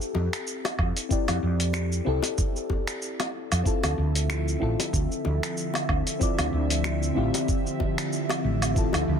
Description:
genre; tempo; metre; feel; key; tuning
sunset chillout; 94 BPM; 4/4; swing 56% on 16ths; unclear; A4 = 439 Hz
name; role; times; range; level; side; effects
mellow FM electric piano; accompaniment; 0.0-9.2 s; C4 to D5; -30 LUFS; moving between left 6 dB and right 1 dB; chorus, phaser, auto-pan, digital delay, shimmer reverb
dusty soul sampler-style drum kit; drums; 0.0-9.1 s; finger snaps, hi-hat, shaker, woodblock; -31 LUFS; right 2 dB; soft clipping on snare
woody fretless electric bass; bass; 0.1-9.2 s; A1 to F2; -26 LUFS; right 1 dB; tube saturation, lush chorus
bongos; percussion; 0.1-9.0 s; none; -36 LUFS; left 7 dB; none
electronic kick drum; drums; 0.8-8.9 s; none; -27 LUFS; right 1 dB; none
airy breathy pad; sustained chords; 3.7-9.2 s; D3 to E5; -31 LUFS; right 1 dB; chorus
room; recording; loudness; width
light reverb, digital ambience; dense, heavily limited modern master; -24 LUFS; side -7 dB against mid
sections
0.0-9.2 A section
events
none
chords
0.0 Fmaj9; 3.7 Dm9

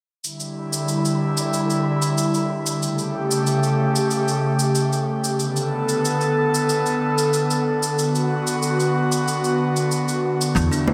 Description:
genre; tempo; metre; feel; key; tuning
sunset chillout; 93 BPM; 4/4; straight; unclear; A4 = 440 Hz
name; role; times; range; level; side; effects
airy breathy pad; sustained chords; 0.2-10.9 s; C#3 to A4; -22 LUFS; equal; chorus
cabasa; drums; 0.2-10.8 s; none; -30 LUFS; equal; none
kalimba; arpeggios; 10.6-10.9 s; B3 to E4; -26 LUFS; equal; none
upright bass; bass; 10.6-10.7 s; E2; -23 LUFS; equal; tube saturation
congas; percussion; 10.9 s; none; -22 LUFS; equal; none
room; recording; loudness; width
moderate plate reverb, RT60 2.4 s; bright 1980s-style digital production; -21 LUFS; mono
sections
0.2-10.9 A section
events
none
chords
0.2 Em7; 2.8 A7; 5.4 Bm7; 8.0 D6

